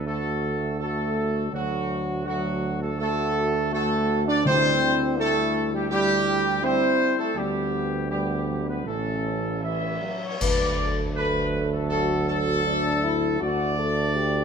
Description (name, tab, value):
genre	classical, ceremonial fanfare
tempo	82 BPM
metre	4/4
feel	straight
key	D major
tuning	A4 = 440 Hz
part	warm trumpet section	melody	0.0-14.4 s	F#4 to E5	-26 LUFS	right 1 dB	none
part	dark trombone section	sustained chords	0.0-14.4 s	D3 to D4	-29 LUFS	right 2 dB	none
part	warm tuba	bass	0.0-14.4 s	A1 to D2	-29 LUFS	right 3 dB	none
part	warm French horn section	sustained chords	0.1-14.4 s	E3 to B4	-30 LUFS	left 6 dB	none
part	timpani	percussion	4.5-5.5 s	D3	-28 LUFS	equal	none
part	cymbal swell, clash cymbals and concert bass drum	percussion	7.4-11.9 s	none	-32 LUFS	left 2 dB	none
room	moderate scoring stage reverb, RT60 1.6 s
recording	none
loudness	-22 LUFS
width	side -6 dB against mid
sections	0.0-10.4 A section; 10.4-14.4 B section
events	band accent 10.4-11.2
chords	0.0 D; 4.5 C/D; 7.4 G/D; 8.9 A; 10.4 D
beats	0.06 0.80 | 1.53 2.26 2.99 3.72 | 4.45 5.18 5.91 6.63 | 7.36 8.10 8.86 9.63 | 10.41 11.16 11.90 12.65 | 13.42 14.16